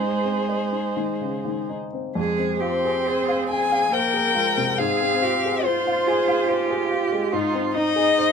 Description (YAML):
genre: classical, slow romantic movement for piano quartet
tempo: 61-72 BPM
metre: 3/4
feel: rubato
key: F minor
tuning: A4 = 438 Hz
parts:
  - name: warm violin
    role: melody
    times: 0.0-8.3 s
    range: Ab4 to Ab5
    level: -23 LUFS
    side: left 5 dB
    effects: none
  - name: rich cello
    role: second line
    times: 0.0-8.3 s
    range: Ab3 to Bb4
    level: -26 LUFS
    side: right 4 dB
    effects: none
  - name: warm baby grand piano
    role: accompaniment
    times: 0.0-8.3 s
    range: F2 to Ab5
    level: -27 LUFS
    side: left 3 dB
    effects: none
  - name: warm viola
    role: accompaniment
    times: 0.0-8.3 s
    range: Ab3 to C5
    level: -28 LUFS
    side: right 5 dB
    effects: none
room: light reverb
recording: minimal, uncompressed stereo recording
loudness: -20 LUFS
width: side -6 dB against mid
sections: 0.0-2.2 A section; 2.2-8.3 B section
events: none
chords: 0.0 Ab; 2.2 Fm; 4.8 Fm/Ab; 7.3 Ab